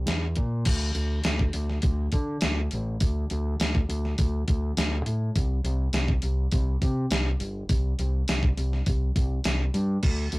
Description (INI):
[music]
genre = rock, shoegaze and dream pop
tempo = 103 BPM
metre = 4/4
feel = straight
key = unclear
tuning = A4 = 440 Hz
[part]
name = growling fingered electric bass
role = bass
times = 0.0-10.4 s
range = G1 to D3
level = -26 LUFS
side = equal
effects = overdrive
[part]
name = gated 80s digital drum machine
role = drums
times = 0.1-10.4 s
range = crash cymbal, hi-hat, kick drum, snare drum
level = -26 LUFS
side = equal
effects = gated reverb, gated reverb snare
[sound]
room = moderate small room reverb, RT60 0.5 s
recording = rough rehearsal-room recording, warm saturation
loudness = -24 LUFS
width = side -22 dB against mid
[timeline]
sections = 0.7-10.4 A section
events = none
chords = none